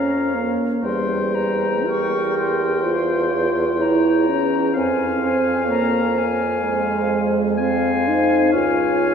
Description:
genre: classical, slow romantic movement for wind quintet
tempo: 62 BPM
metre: 4/4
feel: rubato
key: F minor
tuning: A4 = 439 Hz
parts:
  - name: silver concert flute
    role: melody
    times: 0.0-9.1 s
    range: F5 to C#6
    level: -27 LUFS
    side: left 6 dB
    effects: none
  - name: clear oboe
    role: second line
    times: 0.0-9.1 s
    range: F5 to Ab5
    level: -27 LUFS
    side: left 4 dB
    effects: none
  - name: dark French horn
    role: accompaniment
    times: 0.0-9.1 s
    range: G3 to G4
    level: -20 LUFS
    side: equal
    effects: none
  - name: mellow clarinet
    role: accompaniment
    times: 0.0-9.1 s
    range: Bb4 to C#5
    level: -26 LUFS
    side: right 5 dB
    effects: none
  - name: mellow bassoon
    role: bass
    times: 0.0-9.1 s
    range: Db2 to F2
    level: -23 LUFS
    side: right 1 dB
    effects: none
room: wet cathedral reverb, RT60 4.9 s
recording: recorded in a church or concert hall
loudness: -17 LUFS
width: side -7 dB against mid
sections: 0.0-9.1 A section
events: none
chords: 0.0 Gm7b5/F (rootless); 0.8 Edim7; 4.8 Fm; 8.5 Db

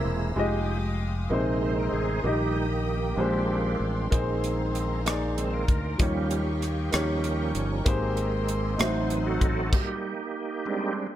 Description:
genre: slow gospel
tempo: 64 BPM (dotted quarters)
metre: 6/8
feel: straight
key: Eb major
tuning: A4 = 440 Hz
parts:
  - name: clear upright piano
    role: accompaniment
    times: 0.0-9.7 s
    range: Ab2 to Eb5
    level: -29 LUFS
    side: left 1 dB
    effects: none
  - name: bright tonewheel organ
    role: sustained chords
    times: 0.0-11.1 s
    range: Eb3 to C5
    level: -30 LUFS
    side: right 4 dB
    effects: slow rotary speaker, chorus vibrato
  - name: rich studio string section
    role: sustained chords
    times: 0.0-9.7 s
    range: Eb4 to E6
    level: -39 LUFS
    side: left 2 dB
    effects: none
  - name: fingered electric bass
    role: bass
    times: 0.1-9.7 s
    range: E1 to Eb2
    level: -29 LUFS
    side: equal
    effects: none
  - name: tight funk drum kit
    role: drums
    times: 4.1-9.9 s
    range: crash cymbal, hi-hat, kick drum, rim click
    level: -27 LUFS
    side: equal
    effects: none
room: moderate recital hall reverb, RT60 1.7 s, small room ambience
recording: none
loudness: -24 LUFS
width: side -12 dB against mid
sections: 0.0-11.2 A section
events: tonewheel organ solo 0.0-11.2; stop 9.7-11.2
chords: 0.4 Fm9; 1.3 Bb9sus4; 2.2 Eb/Bb; 3.2 Bb13; 4.1 Bb9sus4; 6.0 Eb9; 6.9 Eb7; 7.9 Abmaj9; 8.8 Adim7; 9.7 Eb; 10.7 Bb13

